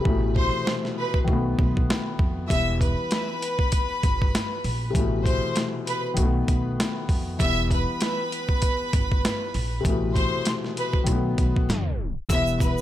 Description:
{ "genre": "hip hop, boom-bap hip-hop", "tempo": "98 BPM", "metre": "4/4", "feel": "swing 56% on 16ths", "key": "E harmonic minor", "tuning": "A4 = 441 Hz", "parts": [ { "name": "dark upright piano", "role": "accompaniment", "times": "0.0-12.8 s", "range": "B2 to F#4", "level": "-28 LUFS", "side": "left 4 dB", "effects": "none" }, { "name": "upright bass", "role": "bass", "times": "0.0-12.7 s", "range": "E1 to B2", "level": "-27 LUFS", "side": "right 1 dB", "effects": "none" }, { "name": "boom bap sampler-style drum kit", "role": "drums", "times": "0.1-12.8 s", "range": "hi-hat, kick drum, snare drum", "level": "-24 LUFS", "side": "equal", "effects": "none" }, { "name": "rich studio violin section", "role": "melody", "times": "0.4-12.8 s", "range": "B4 to E6", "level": "-28 LUFS", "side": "equal", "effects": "digital delay" }, { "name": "tube shaker", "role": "percussion", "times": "12.3-12.8 s", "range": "none", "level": "-40 LUFS", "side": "right 8 dB", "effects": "none" } ], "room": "small room ambience", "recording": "tape stop", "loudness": "-22 LUFS", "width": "side -13 dB against mid", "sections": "0.0-12.3 A section", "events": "break 0.0-2.5; tape stop 11.7-12.3", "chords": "0.1 Amadd9; 1.3 B7; 2.5 Em; 5.0 Amadd9; 6.2 B7; 7.4 Em; 9.8 Amadd9; 11.1 B7; 12.3 Em", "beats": "| 0.05 0.67 1.28 1.89 | 2.50 3.12 3.73 4.34 | 4.95 5.56 6.18 6.79 | 7.40 8.01 8.63 9.24 | 9.85 10.46 11.07 11.69 | 12.30" }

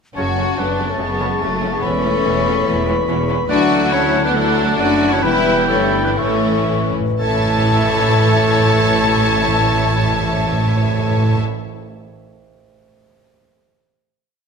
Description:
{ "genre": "cinematic, heroic adventure film score", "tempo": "115-145 BPM", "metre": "4/4", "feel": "straight", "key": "A major", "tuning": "A4 = 440 Hz", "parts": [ { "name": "clear symphonic violin section", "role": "second line", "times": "0.1-11.4 s", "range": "A3 to E5", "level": "-27 LUFS", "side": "left 2 dB", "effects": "none" }, { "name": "clear symphonic violin section", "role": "melody", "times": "0.2-11.4 s", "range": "A3 to A5", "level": "-22 LUFS", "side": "left 4 dB", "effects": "none" }, { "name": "clear clarinet", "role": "second line", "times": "0.2-11.4 s", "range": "F#4 to D5", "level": "-24 LUFS", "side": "equal", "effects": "none" }, { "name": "concert flute", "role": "second line", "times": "0.2-11.4 s", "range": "A5 to C#6", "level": "-26 LUFS", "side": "left 3 dB", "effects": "none" }, { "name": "warm oboe", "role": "second line", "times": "0.2-11.4 s", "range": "C#5 to B5", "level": "-24 LUFS", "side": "right 3 dB", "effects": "none" }, { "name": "rich symphonic viola section", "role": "accompaniment", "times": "0.2-11.4 s", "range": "C#3 to E4", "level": "-24 LUFS", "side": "right 3 dB", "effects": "none" }, { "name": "mellow French horn section", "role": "sustained chords", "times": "0.2-11.4 s", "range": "F#3 to D4", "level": "-23 LUFS", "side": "left 5 dB", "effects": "none" }, { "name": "concert harp", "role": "arpeggios", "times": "0.2-11.7 s", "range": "F#2 to A5", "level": "-26 LUFS", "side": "left 7 dB", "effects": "none" }, { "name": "clear studio cello section", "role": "bass", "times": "0.2-11.4 s", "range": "D2 to A2", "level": "-24 LUFS", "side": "right 3 dB", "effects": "none" }, { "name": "rich symphonic double bass section", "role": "bass", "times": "0.2-11.4 s", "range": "E1 to D2", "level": "-24 LUFS", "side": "right 4 dB", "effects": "none" }, { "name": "timpani", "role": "percussion", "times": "6.2-11.4 s", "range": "A2", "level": "-22 LUFS", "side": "right 1 dB", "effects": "none" } ], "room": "moderate scoring stage reverb, RT60 1.6 s", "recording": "none", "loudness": "-14 LUFS", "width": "side -6 dB against mid", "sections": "0.2-7.2 theme; 7.2-11.4 final chord", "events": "slowing down 2.7-7.2; timpani fill 6.2-7.2", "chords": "0.2 F#m; 1.8 Aadd9/E; 3.5 Dadd9; 5.2 Em; 6.2 A", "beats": "| 0.17 0.59 1.01 1.42 | 1.84 2.25 2.67 3.08 | 3.50 3.92 4.34 4.78 | 5.23 5.70 6.18 6.68 | 7.20 7.72 8.24 8.76 | 9.29 9.81 10.33 10.85" }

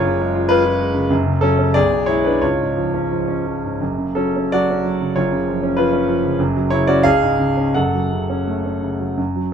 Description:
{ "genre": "classical, romantic character piece for solo piano", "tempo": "79-100 BPM", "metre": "2/4", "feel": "rubato", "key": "F# minor", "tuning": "A4 = 436 Hz", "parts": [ { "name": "clear concert grand piano", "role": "solo", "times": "0.0-9.5 s", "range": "F#1 to F#5", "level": "-16 LUFS", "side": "equal", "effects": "none" } ], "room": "light reverb", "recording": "minimal, uncompressed stereo recording", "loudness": "-16 LUFS", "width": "side -7 dB against mid", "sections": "0.0-9.2 A section", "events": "none", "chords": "0.0 C#7/F#; 1.1 F#m; 1.8 G#dim/B; 2.4 C#; 3.8 F#5; 5.2 C#7/F#; 6.4 F#5; 7.0 C#; 7.8 F#m", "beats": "0.51 | 1.12 1.75 | 2.43 3.11 | 3.81 4.53 | 5.16 5.77 | 6.39 7.04 | 7.76 8.48 | 9.18" }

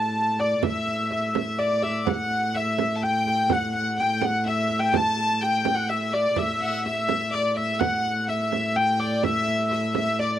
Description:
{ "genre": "medieval dance", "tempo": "125 BPM", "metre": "3/4", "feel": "straight", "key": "unclear", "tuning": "A4 = 439 Hz", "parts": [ { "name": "rich hurdy-gurdy", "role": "melody", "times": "0.0-10.4 s", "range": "D5 to A5", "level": "-24 LUFS", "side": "left 1 dB", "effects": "none" }, { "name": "warm viola da gamba", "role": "drone", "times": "0.0-10.4 s", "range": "A2", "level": "-29 LUFS", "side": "equal", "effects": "none" }, { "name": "bright fiddle", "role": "second line", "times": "0.4-10.3 s", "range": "D5 to A5", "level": "-30 LUFS", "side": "left 4 dB", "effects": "none" }, { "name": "frame drum", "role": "percussion", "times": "0.4-10.3 s", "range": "none", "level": "-28 LUFS", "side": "right 10 dB", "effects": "none" } ], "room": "studio ambience", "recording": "dry, close 1970s-style studio recording", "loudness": "-22 LUFS", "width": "side -11 dB against mid", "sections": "0.6-10.4 A section", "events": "none", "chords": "none", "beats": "0.15 | 0.63 1.11 1.59 | 2.07 2.55 3.02 | 3.50 3.98 4.46 | 4.94 5.42 5.89 | 6.37 6.85 7.33 | 7.81 8.29 8.76 | 9.24 9.72 10.20" }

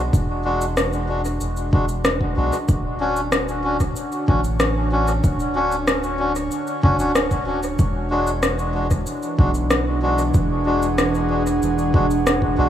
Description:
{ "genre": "ambient dub", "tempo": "94 BPM", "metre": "4/4", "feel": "straight", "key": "E mixolydian", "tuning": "A4 = 440 Hz", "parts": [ { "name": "airy breathy pad", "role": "sustained chords", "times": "0.0-12.7 s", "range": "D3 to F#5", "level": "-25 LUFS", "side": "right 1 dB", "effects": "chorus" }, { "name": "soft dub sub bass", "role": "bass", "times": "0.0-12.7 s", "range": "D1 to B1", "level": "-24 LUFS", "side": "equal", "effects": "none" }, { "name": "electronic cabasa and rim click", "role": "drums", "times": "0.1-12.4 s", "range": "none", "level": "-25 LUFS", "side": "left 1 dB", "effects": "overdrive, dub echo" }, { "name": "electronic kick drum", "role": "drums", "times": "0.1-12.5 s", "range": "none", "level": "-20 LUFS", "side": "equal", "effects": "none" }, { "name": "melodica", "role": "stabs", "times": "0.4-12.7 s", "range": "G#3 to F#4", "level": "-24 LUFS", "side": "left 1 dB", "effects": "dub echo" } ], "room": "moderate plate reverb, RT60 3.5 s", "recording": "dreamy mix soaked in reverb, small room ambience", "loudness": "-18 LUFS", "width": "side -10 dB against mid", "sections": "0.0-12.7 A section", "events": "fade-in on analog synth pad 0.0-12.7", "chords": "0.0 E9; 2.7 Dmaj7; 7.8 E9", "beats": "| 0.13 0.77 1.41 2.05 | 2.69 3.33 3.96 4.60 | 5.24 5.88 6.52 7.16 | 7.79 8.43 9.07 9.71 | 10.35 10.98 11.62 12.26" }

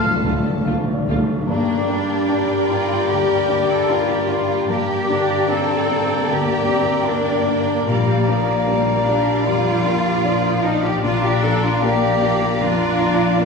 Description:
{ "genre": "cinematic, emotional film score for orchestra", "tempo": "76 BPM", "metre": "4/4", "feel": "rubato", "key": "G minor", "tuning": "A4 = 439 Hz", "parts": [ { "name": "warm symphonic violin section", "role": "melody", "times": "0.0-13.4 s", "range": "F5 to A5", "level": "-30 LUFS", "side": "left 3 dB", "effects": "none" }, { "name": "concert flute", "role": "second line", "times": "0.0-13.4 s", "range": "Bb5 to F6", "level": "-28 LUFS", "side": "right 1 dB", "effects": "none" }, { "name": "mellow clarinet", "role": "second line", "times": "0.0-13.4 s", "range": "F4 to D5", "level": "-26 LUFS", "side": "left 5 dB", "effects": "none" }, { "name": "warm symphonic violin section", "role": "second line", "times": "0.0-13.4 s", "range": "A4 to D5", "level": "-30 LUFS", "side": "left 2 dB", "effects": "none" }, { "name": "warm baby grand piano", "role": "accompaniment", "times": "0.0-13.4 s", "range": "D2 to F5", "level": "-25 LUFS", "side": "left 4 dB", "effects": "none" }, { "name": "dark French horn section", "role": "sustained chords", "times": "0.0-13.4 s", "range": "A3 to D4", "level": "-30 LUFS", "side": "left 5 dB", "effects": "none" }, { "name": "rich symphonic cello section", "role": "bass", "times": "0.0-13.4 s", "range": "A3 to A4", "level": "-22 LUFS", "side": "right 2 dB", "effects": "none" }, { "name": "timpani", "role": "percussion", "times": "0.0-1.5 s", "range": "D3", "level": "-22 LUFS", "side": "equal", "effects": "none" }, { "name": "warm symphonic double bass section", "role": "bass", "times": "0.2-13.4 s", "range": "Bb1 to G2", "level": "-27 LUFS", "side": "right 2 dB", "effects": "none" }, { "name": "rich symphonic viola section", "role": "accompaniment", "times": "0.3-13.4 s", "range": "F3 to F4", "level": "-24 LUFS", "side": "left 1 dB", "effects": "none" }, { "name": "concert harp", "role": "arpeggios", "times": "1.5-13.4 s", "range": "G2 to D4", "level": "-27 LUFS", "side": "left 2 dB", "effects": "none" } ], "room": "wet recital hall reverb, RT60 1.5 s", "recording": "recorded in a church or concert hall, studio ambience", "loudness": "-16 LUFS", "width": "side -4 dB against mid", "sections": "0.0-1.5 A section; 1.5-13.4 B section", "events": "timpani fill 0.0-1.5", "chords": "0.0 Dm; 1.5 Gm; 7.9 Bb", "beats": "0.66 | 1.49 2.29 3.09 3.89 | 4.69 5.49 6.28 7.07 | 7.87 8.66 9.45 10.24 | 11.03 11.82 12.61 13.38" }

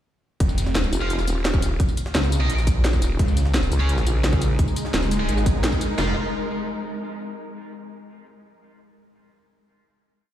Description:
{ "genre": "dark technical drum and bass", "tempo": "172 BPM", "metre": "4/4", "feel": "straight", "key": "F minor", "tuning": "A4 = 440 Hz", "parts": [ { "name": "phased detuned saw bass", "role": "bass", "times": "0.4-6.1 s", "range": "Eb1 to Db2", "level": "-21 LUFS", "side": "equal", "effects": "phaser, overdrive" }, { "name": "drum and bass drum kit", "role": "drums", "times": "0.4-6.1 s", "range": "crash cymbal, kick drum, snare drum", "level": "-22 LUFS", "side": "equal", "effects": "none" }, { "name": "drum and bass drum kit", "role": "drums", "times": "0.4-5.9 s", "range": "hi-hat, snare drum, tambourine", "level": "-27 LUFS", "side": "equal", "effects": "none" }, { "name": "jungle sampler-style drum kit", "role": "drums", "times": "0.4-5.9 s", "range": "hi-hat, snare drum", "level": "-36 LUFS", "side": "equal", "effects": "none" }, { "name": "vowel-sweep wobble bass", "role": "bass", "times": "0.9-4.6 s", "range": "Eb1 to Db2", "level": "-21 LUFS", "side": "equal", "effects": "chorus" }, { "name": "heavy high-gain guitar", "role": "stabs", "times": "1.0-6.1 s", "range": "Ab3 to F5", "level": "-32 LUFS", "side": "right 1 dB", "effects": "distortion, dub echo" }, { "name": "swarming drone", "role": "sustained chords", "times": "3.7-6.1 s", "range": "Db3 to Bb4", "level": "-28 LUFS", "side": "equal", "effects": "built-in reverb, vintage 12-bit sampler grit, sidechain pumping" } ], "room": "light reverb, digital ambience", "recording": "played on a big sound system in a bare room, large studio reverb", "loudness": "-20 LUFS", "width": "side -12 dB against mid", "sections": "0.4-6.0 drop; 6.0-7.4 final chord", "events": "drop 0.4-6.0; band accent 5.6", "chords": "0.4 F5; 1.8 Eb5; 3.2 Db5; 4.6 Ab5; 6.0 F5", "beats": "| 0.40 0.75 1.10 1.45 | 1.80 2.15 2.50 2.85 | 3.19 3.54 3.89 4.24 | 4.59 4.94 5.29 5.64 | 5.99" }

